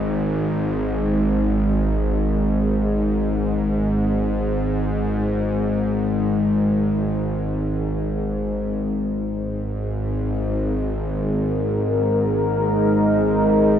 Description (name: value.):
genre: dark ambient drone.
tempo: free time.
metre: none.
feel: none.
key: unclear.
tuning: A4 = 441 Hz.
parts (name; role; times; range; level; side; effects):
bowed-like drone; drone; 0.0-13.8 s; G#1 to G#2; -20 LUFS; equal; built-in reverb.
deep dark ambient pad; sustained chords; 11.4-13.8 s; G#3 to A#4; -20 LUFS; equal; chorus, built-in reverb.
room: wet cathedral reverb, RT60 5.7 s.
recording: dark, warm production.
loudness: -19 LUFS.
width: side -9 dB against mid.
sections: 0.0-8.9 A section; 8.9-13.8 B section.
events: none.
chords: 0.0 N.C.; 8.9 G#5.